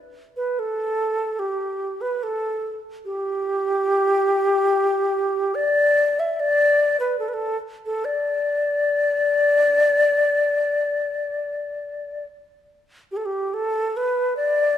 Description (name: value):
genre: chinese traditional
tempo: 72 BPM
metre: 4/4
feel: straight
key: D zhi mode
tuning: A4 = 439 Hz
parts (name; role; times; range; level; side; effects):
- breathy bright xiao; solo; 0.4-14.8 s; G4 to E5; -19 LUFS; left 1 dB; none
room: light reverb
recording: minimal, uncompressed stereo recording, lossy compression artefacts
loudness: -19 LUFS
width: side -10 dB against mid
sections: 0.0-13.1 A section; 13.1-14.8 B section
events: none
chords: none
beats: 0.60 1.43 2.25 | 3.08 3.91 4.73 5.56 | 6.39 7.21 8.05 8.88 | 9.71 10.54 11.38 12.24 | 13.10 13.94